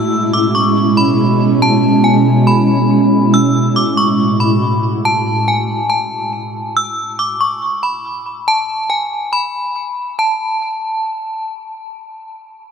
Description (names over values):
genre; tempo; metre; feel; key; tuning
hip hop; 140 BPM; 4/4; half-time; F# minor; A4 = 440 Hz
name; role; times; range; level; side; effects
metallic FM bell; melody; 0.0-11.4 s; G#5 to E6; -17 LUFS; equal; chorus, phaser, tape echo
ethereal airy pad; sustained chords; 0.0-5.0 s; A2 to F#4; -13 LUFS; right 1 dB; ensemble chorus, built-in reverb
room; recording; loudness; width
light reverb; dark, warm production; -12 LUFS; side -6 dB against mid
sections
0.0-10.2 A section; 10.2-12.7 B section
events
none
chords
0.0 C#m7; 3.3 F#m9; 6.8 N.C.